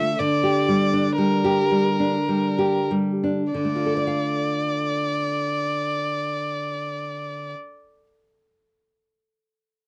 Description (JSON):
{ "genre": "romantic duo for violin and classical guitar", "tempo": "45-64 BPM", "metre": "3/4", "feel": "rubato", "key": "D minor", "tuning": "A4 = 440 Hz", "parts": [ { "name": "rich violin", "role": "melody", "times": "0.0-7.5 s", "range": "Bb4 to E5", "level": "-28 LUFS", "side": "equal", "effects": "none" }, { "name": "nylon-string guitar", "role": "accompaniment", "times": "0.0-8.1 s", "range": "D3 to F5", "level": "-25 LUFS", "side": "equal", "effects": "none" } ], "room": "light reverb", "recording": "worn, warbling old tape, cassette tape, warbly pitch drift", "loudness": "-23 LUFS", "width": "mono", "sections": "0.0-3.5 A section; 3.5-7.2 B section", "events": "slowing down 0.0-3.5", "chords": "0.2 Gm/D; 3.5 Dm" }